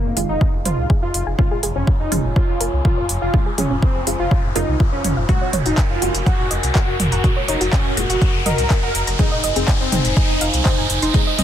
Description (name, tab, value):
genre	melodic techno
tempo	123 BPM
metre	4/4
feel	straight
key	unclear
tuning	A4 = 440 Hz
part	wide unison lead	melody	0.0-11.4 s	Bb3 to Bb4	-24 LUFS	equal	lush chorus, cassette tape, dub echo
part	dark analog pad	sustained chords	0.0-11.4 s	Eb4 to Ab5	-31 LUFS	left 2 dB	chorus, sidechain pumping
part	filtered dub chord stab	stabs	0.0-11.4 s	Bb2 to Gb4	-30 LUFS	equal	none
part	swelling detuned saw bass	bass	0.0-11.4 s	F1 to C2	-24 LUFS	equal	sidechain pumping
part	riser and noise sweep	sound effects	0.0-11.4 s	none	-26 LUFS	equal	none
part	techno drum kit	drums	0.2-11.4 s	handclaps, hi-hat, toms	-23 LUFS	right 1 dB	overdrive, sidechain pumping on hats, sidechain pumping on toms
part	soft round pluck	arpeggios	0.4-11.4 s	Db4 to C6	-28 LUFS	equal	chorus, sidechain pumping, dub echo
part	electronic kick drum	drums	0.4-11.2 s	none	-17 LUFS	equal	none
room	digital ambience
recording	dense, heavily limited modern master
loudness	-16 LUFS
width	side -10 dB against mid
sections	0.0-11.4 A section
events	build-up 0.0-11.4; riser 0.0-11.4; filter sweep on synth arpeggio sound 0.0-11.4; noise sweep 11.1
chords	0.0 Fm7; 1.4 Db/F; 5.3 Gbadd9/F; 9.2 Ab/F